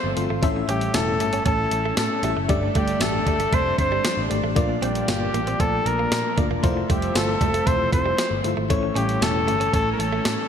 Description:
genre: 1980s-style pop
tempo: 116 BPM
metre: 4/4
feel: straight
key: unclear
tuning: A4 = 440 Hz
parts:
  - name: clear flugelhorn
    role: melody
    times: 0.0-10.5 s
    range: G4 to C5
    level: -25 LUFS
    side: left 1 dB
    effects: ping-pong delay
  - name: folk marimba with hard mallets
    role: second line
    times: 0.0-10.5 s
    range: G3 to C4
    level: -33 LUFS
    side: right 7 dB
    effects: none
  - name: FM electric piano with tremolo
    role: accompaniment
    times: 0.0-10.5 s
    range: G2 to E5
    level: -27 LUFS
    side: left 4 dB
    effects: none
  - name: lush unison pad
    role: sustained chords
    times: 0.0-10.5 s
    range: C3 to E5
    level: -31 LUFS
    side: right 2 dB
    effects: chorus
  - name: vintage muted picked electric bass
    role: bass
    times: 0.0-10.3 s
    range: E1 to Bb2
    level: -28 LUFS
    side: equal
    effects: none
  - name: direct-recorded clean electric guitar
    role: riff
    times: 0.2-10.3 s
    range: F3 to C#4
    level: -32 LUFS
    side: right 6 dB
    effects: wide subtle chorus
  - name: clean 12-bit digital drum machine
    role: drums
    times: 0.2-10.4 s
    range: hi-hat, kick drum, snare drum, tambourine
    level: -25 LUFS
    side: equal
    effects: gated reverb
room: moderate plate reverb, RT60 2.9 s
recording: bright 1980s-style digital production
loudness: -19 LUFS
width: side -8 dB against mid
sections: 0.0-10.5 A section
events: none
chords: 0.4 A; 2.5 Gsus2; 4.6 Bb; 6.6 Fmaj7; 8.7 A

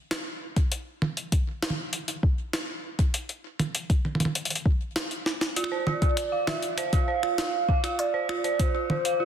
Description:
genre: IDM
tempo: 99 BPM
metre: 4/4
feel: straight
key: unclear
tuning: A4 = 441 Hz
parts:
  - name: jungle sampler-style drum kit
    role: drums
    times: 0.1-9.2 s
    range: finger snaps, hi-hat, snare drum, toms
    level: -29 LUFS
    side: equal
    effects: digital delay
  - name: electronic kick drum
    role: drums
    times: 0.6-8.7 s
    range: none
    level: -24 LUFS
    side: left 1 dB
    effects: none
  - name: dark detuned synth bell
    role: arpeggios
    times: 5.6-9.2 s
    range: F4 to F5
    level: -30 LUFS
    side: right 4 dB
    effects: chorus, digital delay, shimmer reverb
  - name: warbly nostalgic lead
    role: melody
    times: 5.9-9.2 s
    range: C5 to F5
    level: -28 LUFS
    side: right 2 dB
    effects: chorus, digital delay, shimmer reverb
room: moderate echo chamber reverb, RT60 1.6 s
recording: dense, heavily limited modern master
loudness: -25 LUFS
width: side -9 dB against mid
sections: 0.0-9.2 A section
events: drum fill 5.3-5.6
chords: 0.0 N.C.; 5.6 F5

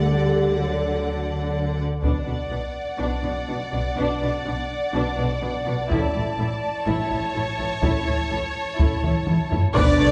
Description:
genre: cinematic, epic orchestral film score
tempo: 124 BPM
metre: 4/4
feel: straight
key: B minor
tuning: A4 = 440 Hz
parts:
  - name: warm symphonic violin section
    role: melody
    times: 0.0-10.1 s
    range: D5 to A5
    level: -34 LUFS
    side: equal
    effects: none
  - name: rich studio violin section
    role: second line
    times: 0.0-10.1 s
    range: C#5 to D5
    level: -31 LUFS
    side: equal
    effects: none
  - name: warm symphonic viola section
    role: accompaniment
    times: 0.0-10.1 s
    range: D4 to D5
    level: -32 LUFS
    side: equal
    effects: none
  - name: mellow French horn section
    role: sustained chords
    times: 0.0-10.1 s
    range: F#3 to B4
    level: -30 LUFS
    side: equal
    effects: none
  - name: rich symphonic cello section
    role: bass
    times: 0.0-10.1 s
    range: A2 to D3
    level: -32 LUFS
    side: equal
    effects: none
  - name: warm symphonic double bass section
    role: bass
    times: 0.0-10.1 s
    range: A1 to D2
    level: -31 LUFS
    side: equal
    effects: none
  - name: taiko ensemble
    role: drums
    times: 2.0-3.0, 5.9-10.1 s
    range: none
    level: -24 LUFS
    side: equal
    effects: none
  - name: mellow concert flute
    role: second line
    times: 9.8-10.1 s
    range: D5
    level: -31 LUFS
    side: equal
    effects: none
  - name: clash cymbals and concert bass drum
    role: percussion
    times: 9.8-10.1 s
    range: none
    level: -30 LUFS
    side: equal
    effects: none
  - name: timpani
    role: percussion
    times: 9.8-10.1 s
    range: B2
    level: -30 LUFS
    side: equal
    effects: none
room: wet recital hall reverb, RT60 1.5 s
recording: heard from further back in the room, nothing above 10.5 kHz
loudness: -24 LUFS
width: mono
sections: 0.0-2.0 A section; 2.0-9.8 B section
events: drum fill 9.1-9.8; band accent 9.8-10.1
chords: 0.0 D; 2.0 Bm; 5.9 A

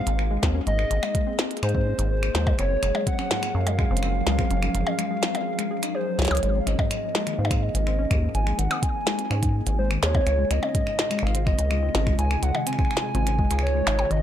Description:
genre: IDM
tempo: 125 BPM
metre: 4/4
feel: straight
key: Ab mixolydian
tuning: A4 = 440 Hz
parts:
  - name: warbly nostalgic lead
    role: melody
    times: 0.0-14.2 s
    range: C5 to Ab5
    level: -28 LUFS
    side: equal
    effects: chorus, dub echo
  - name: glassy FM pad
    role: sustained chords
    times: 0.0-14.2 s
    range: C3 to Bb4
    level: -32 LUFS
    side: left 1 dB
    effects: ensemble chorus, built-in reverb
  - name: warbly dusty pluck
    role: arpeggios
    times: 0.0-14.2 s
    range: Ab2 to Ab4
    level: -32 LUFS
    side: left 3 dB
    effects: chorus, dub echo
  - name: deep acid bass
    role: bass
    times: 0.0-14.2 s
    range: Gb1 to Ab2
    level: -24 LUFS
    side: equal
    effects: none
  - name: glitchy drum kit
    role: drums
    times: 0.1-14.2 s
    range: finger snaps, hi-hat, percussion blips, snare drum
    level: -28 LUFS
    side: equal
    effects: overdrive
  - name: electronic kick drum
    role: drums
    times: 0.4-13.5 s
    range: none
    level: -25 LUFS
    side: equal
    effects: overdrive
room: light reverb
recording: echo-heavy mix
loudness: -21 LUFS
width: side -10 dB against mid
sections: 0.0-14.2 A section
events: kick drops out 4.5-6.4; drum fill 6.2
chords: 0.0 Absus2; 2.6 Gbmaj7; 6.4 Absus2

